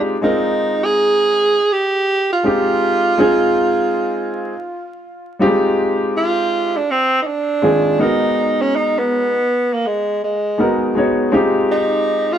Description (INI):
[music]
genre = hip hop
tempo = 81 BPM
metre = 4/4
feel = swing 63% on 16ths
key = F dorian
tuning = A4 = 440 Hz
[part]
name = breathy tenor saxophone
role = melody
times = 0.0-12.4 s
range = Ab3 to Ab4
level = -17 LUFS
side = right 2 dB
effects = tape echo
[part]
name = warm upright piano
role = accompaniment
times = 0.0-12.4 s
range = Eb3 to Db5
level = -16 LUFS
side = left 1 dB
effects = none
[sound]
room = wet studio reverb, RT60 0.6 s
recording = vinyl crackle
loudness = -14 LUFS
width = side -9 dB against mid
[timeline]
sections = 0.0-5.4 A section; 5.4-12.4 B section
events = tenor saxophone solo 5.4-12.4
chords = 0.0 Fm9; 8.0 Abm9; 11.3 Fm9